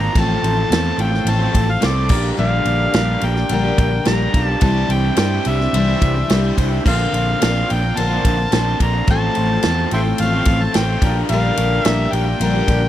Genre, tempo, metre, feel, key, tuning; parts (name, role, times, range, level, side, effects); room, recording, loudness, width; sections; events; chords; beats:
folk rock and heartland rock; 108 BPM; 4/4; straight; A4 = 440 Hz
overdriven harmonica; melody; 0.0-12.9 s; C5 to Bb5; -22 LUFS; equal; tape echo
picked steel-string acoustic guitar; accompaniment; 0.0-12.9 s; A2 to C5; -23 LUFS; left 6 dB
accordion; sustained chords; 0.0-12.9 s; C4 to C5; -33 LUFS; right 3 dB
raw garage guitar; riff; 0.0-12.8 s; A2 to G4; -25 LUFS; right 4 dB; overdrive
fingered electric bass; bass; 0.0-12.9 s; A1 to G2; -19 LUFS; equal
natural country drum kit; drums; 0.2-12.8 s; crash cymbal, kick drum, ride cymbal, snare drum; -21 LUFS; equal
little or no reverb; dry, close 1970s-style studio recording; -15 LUFS; side -12 dB against mid
0.0-12.9 A section
0.1 F/A; 2.1 Gm7/Bb; 4.6 Cadd9; 6.9 Bbadd9; 9.1 F/A; 11.0 Gm7/Bb
| 0.15 0.71 1.26 1.82 | 2.38 2.94 3.50 4.06 | 4.62 5.18 5.74 6.29 | 6.85 7.41 7.96 8.52 | 9.08 9.63 10.19 10.74 | 11.30 11.85 12.40